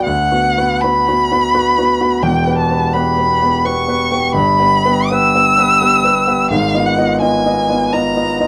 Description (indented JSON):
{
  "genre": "classical, romantic duo for violin and grand piano",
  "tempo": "85 BPM",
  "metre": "3/4",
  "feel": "rubato",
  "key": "unclear",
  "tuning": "A4 = 439 Hz",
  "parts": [
    { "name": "rich violin", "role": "melody", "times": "0.0-8.5 s", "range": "F5 to E6", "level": "-16 LUFS", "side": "equal", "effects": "none" },
    { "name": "warm grand piano", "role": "accompaniment", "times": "0.0-8.5 s", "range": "E1 to Eb5", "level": "-18 LUFS", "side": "equal", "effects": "none" }
  ],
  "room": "light reverb",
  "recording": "dark, warm production",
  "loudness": "-14 LUFS",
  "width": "mono",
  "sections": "0.0-8.5 A section",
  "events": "none",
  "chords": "0.1 Bm/D; 2.2 Em; 4.3 Em/G; 6.5 Fm7b5/Ab"
}